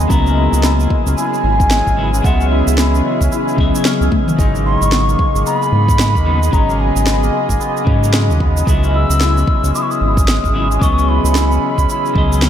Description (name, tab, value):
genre	organic downtempo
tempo	112 BPM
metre	4/4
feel	swing 60% on 16ths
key	unclear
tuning	A4 = 440 Hz
part	breathy mellow bansuri	melody	0.0-12.5 s	E5 to E6	-20 LUFS	equal	ping-pong delay, shimmer reverb
part	clean electric guitar	accompaniment	0.0-12.5 s	C#3 to E5	-21 LUFS	left 3 dB	vintage 12-bit sampler grit, sidechain pumping, tape echo, shimmer reverb
part	bowed-like drone	sustained chords	0.0-12.5 s	E3 to E5	-23 LUFS	right 1 dB	built-in reverb, sidechain pumping, shimmer reverb
part	santur	arpeggios	0.0-12.5 s	G#3 to E5	-21 LUFS	left 2 dB	tape echo, shimmer reverb
part	round analog bass	bass	0.0-12.5 s	G#1 to G#2	-15 LUFS	equal	sidechain pumping
part	afro-pop drum kit	drums	0.0-12.5 s	shaker, snare drum, toms	-20 LUFS	equal	none
part	electronic kick drum	drums	0.1-12.3 s	none	-17 LUFS	equal	none
room	light reverb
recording	none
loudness	-12 LUFS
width	side -10 dB against mid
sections	0.0-12.5 A section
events	drum fill 4.1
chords	0.1 C#m; 4.4 G#madd9; 8.7 C#m